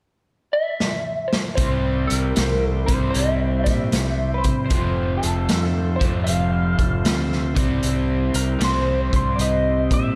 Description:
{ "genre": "blues rock power trio and southern rock", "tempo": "77 BPM", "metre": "4/4", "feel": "swing 67% on 8ths", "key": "C mixolydian", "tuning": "A4 = 440 Hz", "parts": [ { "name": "lightly driven lead guitar", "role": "melody", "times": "0.5-10.2 s", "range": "A4 to F5", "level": "-28 LUFS", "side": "equal", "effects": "wah, slapback echo" }, { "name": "raw garage drum kit", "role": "drums", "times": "0.8-10.0 s", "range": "hi-hat, kick drum, snare drum", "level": "-26 LUFS", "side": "equal", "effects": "none" }, { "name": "overdriven tonewheel organ", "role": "sustained chords", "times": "1.6-10.2 s", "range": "E4 to C5", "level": "-38 LUFS", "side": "equal", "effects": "slow rotary speaker" }, { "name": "crunchy overdriven guitar", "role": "riff", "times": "1.6-10.2 s", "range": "F2 to C4", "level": "-27 LUFS", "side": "equal", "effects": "spring reverb" }, { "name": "fingered electric bass", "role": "bass", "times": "1.6-10.2 s", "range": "F1 to C3", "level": "-25 LUFS", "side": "equal", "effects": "none" } ], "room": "moderate lush hall reverb, RT60 1.7 s, studio reverb", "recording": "big arena sound", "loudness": "-21 LUFS", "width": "mono", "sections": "0.0-1.6 A section; 1.6-10.2 B section", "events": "drum fill 0.8-1.6", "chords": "0.0 N.C.; 1.6 C; 4.7 F; 7.4 C" }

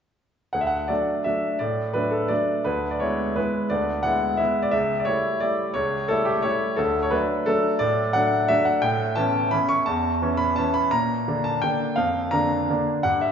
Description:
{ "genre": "classical, piano waltz", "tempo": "173 BPM", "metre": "3/4", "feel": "uneven beats, rubato", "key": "D major", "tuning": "A4 = 440 Hz", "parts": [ { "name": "bright grand piano", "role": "solo", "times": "0.5-13.3 s", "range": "C#2 to C#6", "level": "-20 LUFS", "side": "equal", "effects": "none" } ], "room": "wet recital hall reverb, RT60 1.6 s", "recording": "heard from further back in the room, nothing above 7.7 kHz", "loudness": "-21 LUFS", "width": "side -7 dB against mid", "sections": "0.5-13.3 A section", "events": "none", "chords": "0.5 D; 2.7 E7/D; 4.7 A7/C#; 6.8 D; 8.8 A9; 10.9 Bb" }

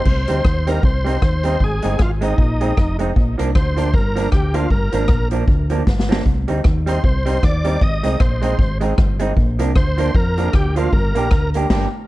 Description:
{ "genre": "ska", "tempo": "155 BPM", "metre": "4/4", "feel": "swing 58% on 8ths", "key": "C minor", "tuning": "A4 = 440 Hz", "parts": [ { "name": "overdriven tonewheel organ", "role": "melody", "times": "0.0-11.5 s", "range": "Eb4 to Eb5", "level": "-25 LUFS", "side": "equal", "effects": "chorus vibrato, plate reverb, tape echo" }, { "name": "fingered electric bass", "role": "bass", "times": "0.1-11.9 s", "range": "F1 to F2", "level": "-20 LUFS", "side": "equal", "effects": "none" }, { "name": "street-band drum kit", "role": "drums", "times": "0.1-11.8 s", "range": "crash cymbal, hi-hat, kick drum, rim click, snare drum", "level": "-18 LUFS", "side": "equal", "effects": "none" }, { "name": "electric guitar through a small old amp", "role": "accompaniment", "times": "0.3-11.9 s", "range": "F3 to G4", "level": "-23 LUFS", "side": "right 3 dB", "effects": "plate reverb" } ], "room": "light reverb", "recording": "dark, warm production", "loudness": "-15 LUFS", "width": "side -17 dB against mid", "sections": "0.1-12.1 A section", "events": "drum fill 5.9-6.3; band accent 11.7-12.1", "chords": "0.1 Cm; 1.6 Ab; 3.2 Bb; 4.7 Gm7; 6.3 Cm; 7.8 Ab; 9.4 Bb; 10.9 Gm" }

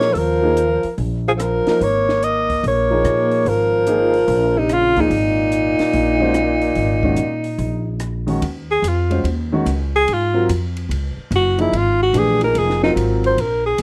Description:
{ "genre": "modal jazz", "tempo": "145 BPM", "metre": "4/4", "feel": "swing 65% on 8ths", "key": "Eb dorian", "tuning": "A4 = 441 Hz", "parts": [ { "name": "breathy alto saxophone", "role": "melody", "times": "0.0-13.8 s", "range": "Eb4 to Eb5", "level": "-20 LUFS", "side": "equal", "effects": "none" }, { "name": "mellow tenor saxophone", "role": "second line", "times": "0.0-8.0 s", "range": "Bb2 to Bb3", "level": "-25 LUFS", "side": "equal", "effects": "none" }, { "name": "warm concert grand piano", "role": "accompaniment", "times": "0.0-13.4 s", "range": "Eb3 to C5", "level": "-24 LUFS", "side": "equal", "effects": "none" }, { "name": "upright bass", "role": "bass", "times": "0.0-13.8 s", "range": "F1 to Bb2", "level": "-24 LUFS", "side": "equal", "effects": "none" }, { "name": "compact cocktail drum kit", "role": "drums", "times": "0.0-13.8 s", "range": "hi-hat, kick drum, ride cymbal, rim click, snare drum", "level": "-34 LUFS", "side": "equal", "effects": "none" } ], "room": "light reverb", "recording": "none", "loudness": "-18 LUFS", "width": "mono", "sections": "0.0-8.4 A section; 8.4-13.8 B section", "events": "alto saxophone solo 8.4-13.8", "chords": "0.0 Eb9sus4" }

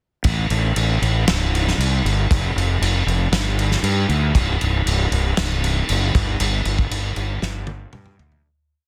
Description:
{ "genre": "quiet-loud alternative rock", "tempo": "117 BPM", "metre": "4/4", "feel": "straight", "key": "unclear", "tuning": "A4 = 442 Hz", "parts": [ { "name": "fuzz fingered electric bass", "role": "bass", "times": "0.2-8.4 s", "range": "C1 to G2", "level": "-22 LUFS", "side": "equal", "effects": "overdrive" }, { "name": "loose indie drum kit", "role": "drums", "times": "0.2-8.4 s", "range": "crash cymbal, kick drum, snare drum, toms", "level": "-24 LUFS", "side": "equal", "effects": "none" } ], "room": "little or no reverb", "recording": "dense, heavily limited modern master", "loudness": "-20 LUFS", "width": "mono", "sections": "0.2-8.4 pre-chorus", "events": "fade-out 6.4-8.4; drum fill 7.4-8.4", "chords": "none" }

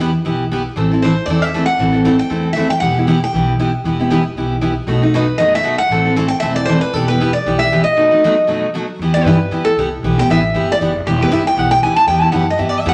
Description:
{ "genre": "acoustic string swing (jazz manouche)", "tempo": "233 BPM", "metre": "4/4", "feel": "swing 57% on 8ths", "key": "E minor", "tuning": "A4 = 439 Hz", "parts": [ { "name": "picked steel-string acoustic guitar", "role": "accompaniment", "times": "0.0-12.9 s", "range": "B2 to A4", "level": "-19 LUFS", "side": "equal", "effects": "none" }, { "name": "upright bass", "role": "bass", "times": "0.0-12.9 s", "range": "E1 to G2", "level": "-22 LUFS", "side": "equal", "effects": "none" }, { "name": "picked steel-string acoustic guitar", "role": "melody", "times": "1.0-12.9 s", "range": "G4 to A5", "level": "-19 LUFS", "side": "equal", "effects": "none" } ], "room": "moderate large studio reverb, RT60 1.1 s", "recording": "none", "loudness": "-15 LUFS", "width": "mono", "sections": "0.0-9.0 A section; 9.0-12.9 B section", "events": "steel-string acoustic guitar solo 9.0-12.9", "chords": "0.0 Em; 0.8 Am; 2.8 Em; 4.9 B7; 5.9 Am; 6.9 Em; 8.0 B7; 9.0 Em" }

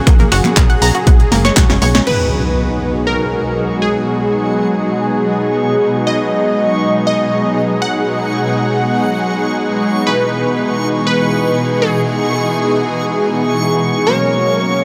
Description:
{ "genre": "progressive house", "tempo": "120 BPM", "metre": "4/4", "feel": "straight", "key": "B major", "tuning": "A4 = 439 Hz", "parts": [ { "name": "plucky unison lead", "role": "melody", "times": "0.0-14.8 s", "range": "G#4 to F#5", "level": "-21 LUFS", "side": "equal", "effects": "phaser, sidechain pumping, tape echo" }, { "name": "shimmering ambient pad", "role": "sustained chords", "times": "0.0-14.8 s", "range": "A#2 to A#4", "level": "-22 LUFS", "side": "equal", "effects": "chorus, built-in reverb, sidechain pumping" }, { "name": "analog pluck", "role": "arpeggios", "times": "0.1-2.0 s", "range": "A#3 to A#5", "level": "-22 LUFS", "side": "equal", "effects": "chorus, sidechain pumping, dub echo" }, { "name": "tight sequencer bass", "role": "bass", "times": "0.1-2.0 s", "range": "F#1 to B1", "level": "-18 LUFS", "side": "equal", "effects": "sidechain pumping" }, { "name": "deep house drum kit", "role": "drums", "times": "0.1-2.2 s", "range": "crash cymbal, finger snaps, handclaps, hi-hat, snare drum", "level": "-20 LUFS", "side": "equal", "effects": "overdrive, sidechain pumping on hats, sidechain pumping on cymbals" }, { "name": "electronic kick drum", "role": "drums", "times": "0.1-1.7 s", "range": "none", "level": "-12 LUFS", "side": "equal", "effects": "none" }, { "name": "bongos and congas", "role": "percussion", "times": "0.1-2.0 s", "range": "none", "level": "-23 LUFS", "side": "equal", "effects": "none" }, { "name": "soft supersaw", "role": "stabs", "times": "2.1-14.8 s", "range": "B2 to A#4", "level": "-20 LUFS", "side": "equal", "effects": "sidechain pumping, low-pass filter, dub echo" }, { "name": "impact", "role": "sound effects", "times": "2.1-4.1 s", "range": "none", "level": "-24 LUFS", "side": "equal", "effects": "none" }, { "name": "backwards swelling texture", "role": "texture", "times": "3.3-14.8 s", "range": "C#6", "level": "-28 LUFS", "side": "equal", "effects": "built-in reverb, sidechain pumping" } ], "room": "light reverb, digital ambience", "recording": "none", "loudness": "-15 LUFS", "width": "mono", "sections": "0.0-2.1 A section; 2.1-14.8 B section", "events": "drum fill 1.3-2.1; impact 2.1-4.1", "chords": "0.0 F#; 2.1 B6; 10.1 Emaj7/B; 14.1 F#/B" }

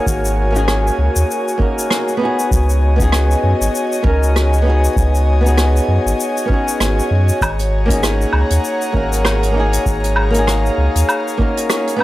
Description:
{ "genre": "sunset chillout", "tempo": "98 BPM", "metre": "4/4", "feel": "swing 58% on 16ths", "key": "G# dorian", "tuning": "A4 = 440 Hz", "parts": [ { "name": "flamenco guitar", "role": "accompaniment", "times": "0.0-12.0 s", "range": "A#3 to A#4", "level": "-20 LUFS", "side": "equal", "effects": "auto-pan, analog delay" }, { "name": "airy breathy pad", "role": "sustained chords", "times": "0.0-12.0 s", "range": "F#4 to A#5", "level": "-21 LUFS", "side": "left 1 dB", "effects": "chorus" }, { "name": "drifting glass-harmonics texture", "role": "texture", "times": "0.0-12.0 s", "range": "G#4 to G#5", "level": "-29 LUFS", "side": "right 1 dB", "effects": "chorus, built-in reverb" }, { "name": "warm sub bass", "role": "bass", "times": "0.1-11.0 s", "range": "G#1 to F#2", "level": "-15 LUFS", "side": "equal", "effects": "none" }, { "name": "electronic kick drum", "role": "drums", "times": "0.1-11.5 s", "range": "none", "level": "-18 LUFS", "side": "equal", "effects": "overdrive" }, { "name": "jazz brush drum kit", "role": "drums", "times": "0.1-12.0 s", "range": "hi-hat, rim click, shaker, woodblock", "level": "-21 LUFS", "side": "equal", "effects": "none" } ], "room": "studio reverb", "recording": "dry, gritty hardware recording, transformer saturation", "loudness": "-13 LUFS", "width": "side -16 dB against mid", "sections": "0.0-12.0 A section", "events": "none", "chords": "0.0 G#9sus4; 2.2 C#9sus4; 7.4 G#9sus4" }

